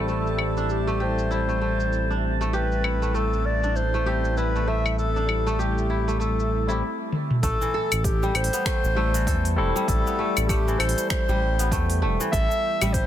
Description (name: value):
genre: organic downtempo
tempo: 98 BPM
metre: 4/4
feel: swing 59% on 16ths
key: A minor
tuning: A4 = 440 Hz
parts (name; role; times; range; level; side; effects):
- barky tine electric piano; accompaniment; 0.0-13.1 s; G3 to A4; -31 LUFS; left 2 dB; lush chorus, sidechain pumping, tape echo
- airy breathy pad; sustained chords; 0.0-6.8 s; G3 to E5; -34 LUFS; right 1 dB; chorus, sidechain pumping
- kora; arpeggios; 0.0-13.1 s; E3 to A4; -29 LUFS; equal; tape echo
- smooth synth bass; bass; 0.0-13.1 s; E1 to E2; -25 LUFS; equal; sidechain pumping
- drifting glass-harmonics texture; texture; 0.0-6.8 s; A5; -39 LUFS; right 7 dB; chorus, built-in reverb
- mellow clarinet; melody; 0.1-13.1 s; G4 to E5; -28 LUFS; left 1 dB; tape echo
- deep house drum kit; drums; 0.1-13.1 s; cabasa, claves, finger snaps, hi-hat, toms; -29 LUFS; left 1 dB; low-pass filter on perc, low-pass filter on toms, low-pass filter on hats, soft clipping on snare, low-pass filter on snare, low-pass filter on room
- electronic kick drum; drums; 7.4-13.1 s; none; -26 LUFS; equal; none
room: light reverb, digital ambience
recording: dense, heavily limited modern master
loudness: -21 LUFS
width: side -11 dB against mid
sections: 0.0-7.4 A section; 7.4-13.1 B section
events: drum fill 7.1-7.4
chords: 0.0 Am7